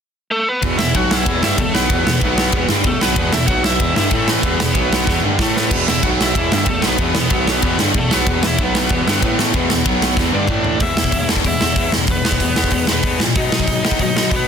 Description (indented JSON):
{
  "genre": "punk rock",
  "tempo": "188 BPM",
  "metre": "4/4",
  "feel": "straight",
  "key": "E minor",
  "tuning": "A4 = 444 Hz",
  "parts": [
    { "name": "biting lead guitar", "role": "melody", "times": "0.3-14.5 s", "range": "A3 to F#5", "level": "-21 LUFS", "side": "equal", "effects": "overdrive" },
    { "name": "crunchy overdriven guitar", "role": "riff", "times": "0.6-10.8 s", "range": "E2 to B3", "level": "-24 LUFS", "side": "equal", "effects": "none" },
    { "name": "overdriven electric guitar", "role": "riff", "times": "0.6-14.5 s", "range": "E2 to B3", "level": "-24 LUFS", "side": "left 12 dB", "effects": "none" },
    { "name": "overdriven semi-hollow guitar", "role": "riff", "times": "0.6-10.8 s", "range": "E2 to B3", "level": "-23 LUFS", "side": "right 11 dB", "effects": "none" },
    { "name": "mellow bass clarinet", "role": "bass", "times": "0.6-14.5 s", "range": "B1 to B2", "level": "-23 LUFS", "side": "equal", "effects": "none" },
    { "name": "big rock drum kit", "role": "drums", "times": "0.6-14.4 s", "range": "crash cymbal, hi-hat, kick drum, ride cymbal, snare drum, toms", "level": "-17 LUFS", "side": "equal", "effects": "none" }
  ],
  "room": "little or no reverb",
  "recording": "dense, heavily limited modern master",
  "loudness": "-14 LUFS",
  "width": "side -7 dB against mid",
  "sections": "0.6-10.8 A section; 10.8-14.5 B section",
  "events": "drum fill 5.1-5.7, 10.2-10.8",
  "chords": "0.0 Asus2; 0.6 E5; 0.9 B5; 1.3 Em; 2.2 B5; 2.5 Em; 3.5 B5; 3.8 Em; 4.1 A5; 4.4 E5; 4.8 B5; 5.1 Em; 5.4 A5; 5.7 E5; 6.0 B5; 6.4 Em; 7.3 B5; 7.6 Em; 8.6 B5; 8.9 Em; 9.2 A5; 9.5 E5; 9.9 B5; 10.2 Em; 10.5 A5; 10.8 E5; 13.4 B"
}